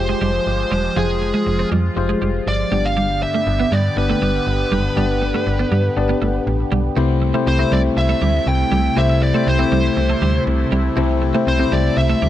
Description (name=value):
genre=pop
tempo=120 BPM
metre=4/4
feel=straight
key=C major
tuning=A4 = 440 Hz
part: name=smooth overdriven lead guitar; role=melody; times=0.0-12.3 s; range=Ab4 to G5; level=-23 LUFS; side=right 1 dB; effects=tape echo
part: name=barky tine electric piano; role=accompaniment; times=0.0-12.3 s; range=G2 to G5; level=-22 LUFS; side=left 6 dB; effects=overdrive
part: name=phased analog pad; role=sustained chords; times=0.0-12.3 s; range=C3 to G4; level=-25 LUFS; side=right 1 dB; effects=phaser, chorus
part: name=slap-like FM bass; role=bass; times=0.0-12.3 s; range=E1 to G2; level=-20 LUFS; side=equal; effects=none
part: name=twelve-string electric guitar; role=riff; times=0.1-12.3 s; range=F3 to C4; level=-23 LUFS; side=right 5 dB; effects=ensemble chorus
part: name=overdriven electric guitar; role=accompaniment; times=7.0-12.3 s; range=C3 to C4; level=-29 LUFS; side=right 3 dB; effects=wide subtle chorus
room=little or no reverb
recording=dry, close 1970s-style studio recording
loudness=-15 LUFS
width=side -12 dB against mid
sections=0.0-7.0 A section; 7.0-12.3 B section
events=none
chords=0.0 Fmadd9; 2.7 G; 7.0 C6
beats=0.47 | 0.97 1.47 1.97 2.47 | 2.97 3.47 3.97 4.47 | 4.97 5.47 5.97 6.47 | 6.97 7.47 7.97 8.47 | 8.97 9.47 9.97 10.47 | 10.97 11.47 11.97